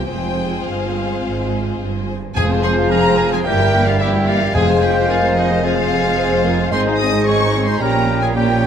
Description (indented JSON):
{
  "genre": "quick classical-period movement for symphony orchestra",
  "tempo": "110 BPM",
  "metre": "4/4",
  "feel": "rubato",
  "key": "F minor",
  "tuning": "A4 = 442 Hz",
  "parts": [
    { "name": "rich studio violin section", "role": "melody", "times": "0.0-8.7 s", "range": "Eb5 to Eb6", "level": "-23 LUFS", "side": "left 3 dB", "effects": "none" },
    { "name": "rich chamber violin section", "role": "second line", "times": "0.0-8.7 s", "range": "Bb3 to C5", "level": "-25 LUFS", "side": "left 2 dB", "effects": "none" },
    { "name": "warm studio viola section", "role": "accompaniment", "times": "0.0-8.7 s", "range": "Eb3 to F4", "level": "-24 LUFS", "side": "equal", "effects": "none" },
    { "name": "mellow French horn section", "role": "sustained chords", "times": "0.0-8.7 s", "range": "E3 to C5", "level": "-22 LUFS", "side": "left 4 dB", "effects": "none" },
    { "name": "rich chamber cello section", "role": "bass", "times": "0.0-8.7 s", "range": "F2 to Bb2", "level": "-22 LUFS", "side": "right 3 dB", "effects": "none" },
    { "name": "rich chamber double bass section", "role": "bass", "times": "0.0-8.7 s", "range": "F1 to Bb1", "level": "-23 LUFS", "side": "right 4 dB", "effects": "none" },
    { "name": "bright wooden flute", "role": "second line", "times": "2.4-8.7 s", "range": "Db5 to G5", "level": "-24 LUFS", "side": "equal", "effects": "none" },
    { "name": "clear oboe", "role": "second line", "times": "2.4-8.7 s", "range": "Eb4 to Eb5", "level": "-25 LUFS", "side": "right 1 dB", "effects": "none" },
    { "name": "warm clarinet", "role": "second line", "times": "2.4-8.7 s", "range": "Bb4 to Db5", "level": "-27 LUFS", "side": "left 2 dB", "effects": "none" },
    { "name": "warm bassoon", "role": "accompaniment", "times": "2.4-8.7 s", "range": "F3 to Ab3", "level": "-25 LUFS", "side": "right 3 dB", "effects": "none" },
    { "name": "timpani", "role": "percussion", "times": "2.4-5.3 s", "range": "F2", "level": "-25 LUFS", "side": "left 1 dB", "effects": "none" }
  ],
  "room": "moderate scoring stage reverb, RT60 1.9 s",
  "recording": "none",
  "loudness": "-14 LUFS",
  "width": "side -8 dB against mid",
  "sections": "0.0-2.4 A section; 2.4-8.7 B section",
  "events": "none",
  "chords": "0.1 Fm; 3.5 Edim/G; 4.5 Fm; 6.7 Ab; 7.8 Gdim/Bb"
}